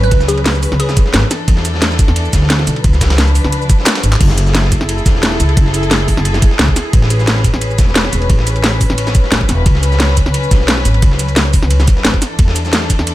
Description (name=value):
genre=liquid drum and bass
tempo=176 BPM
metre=4/4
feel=swing 53% on 16ths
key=F# minor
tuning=A4 = 440 Hz
part: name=glassy wavetable pluck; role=melody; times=0.0-1.3 s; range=G#4 to B4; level=-21 LUFS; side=right 2 dB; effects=chorus, cassette tape, dub echo
part: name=warm chamber string section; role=sustained chords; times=0.0-13.1 s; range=E3 to B4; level=-21 LUFS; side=left 1 dB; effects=sidechain pumping
part: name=upright bass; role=bass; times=0.0-13.1 s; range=E1 to E2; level=-14 LUFS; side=equal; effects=none
part: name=dusty soul sampler-style drum kit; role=drums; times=0.0-13.1 s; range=hi-hat, ride cymbal, snare drum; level=-22 LUFS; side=equal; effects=overdrive, high-pass filter on cymbals, high-pass filter on snare, high-pass filter on hats, high-pass filter on room
part: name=electronic kick drum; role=drums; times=0.1-13.0 s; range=none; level=-12 LUFS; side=equal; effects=none
part: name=garage drum kit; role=drums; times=0.1-13.1 s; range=crash cymbal, handclaps, hi-hat, shaker, snare drum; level=-16 LUFS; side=equal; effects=none
room=digital ambience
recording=none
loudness=-10 LUFS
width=side -15 dB against mid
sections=0.0-4.2 A section; 4.2-13.1 A section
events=drop 0.0-4.2, 4.2-13.1; drum fill 3.9-4.2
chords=0.0 C#7sus4; 1.3 E7sus4; 2.8 C#7b9; 4.2 F#m9; 6.9 Amaj9; 9.7 C#7sus4; 12.2 E7sus4